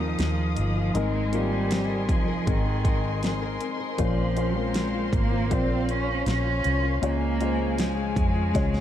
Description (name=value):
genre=pop ballad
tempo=79 BPM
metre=4/4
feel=straight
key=Ab major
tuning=A4 = 440 Hz
part: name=warm cello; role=melody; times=0.0-8.8 s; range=Eb3 to Db4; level=-28 LUFS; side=right 2 dB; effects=none
part: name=dark baby grand piano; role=accompaniment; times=0.0-8.8 s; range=Ab2 to Db5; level=-31 LUFS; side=left 4 dB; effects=none
part: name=warm studio string section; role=sustained chords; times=0.0-8.8 s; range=Db4 to Eb6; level=-34 LUFS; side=left 4 dB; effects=none
part: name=fingerpicked steel-string acoustic guitar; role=arpeggios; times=0.0-8.8 s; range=Bb2 to Bb4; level=-34 LUFS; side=left 6 dB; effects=ping-pong delay
part: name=vintage muted fingered electric bass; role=bass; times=0.0-8.8 s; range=G1 to F2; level=-28 LUFS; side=equal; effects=none
part: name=pop drum kit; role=drums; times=0.2-8.8 s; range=hi-hat, kick drum, snare drum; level=-27 LUFS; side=equal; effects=none
room=light reverb, studio reverb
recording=dark, warm production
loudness=-23 LUFS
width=side -11 dB against mid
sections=0.0-8.8 A section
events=drum fill 8.5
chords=0.0 Ebsus2; 0.9 Abadd9; 4.0 Bbmadd9; 7.0 Db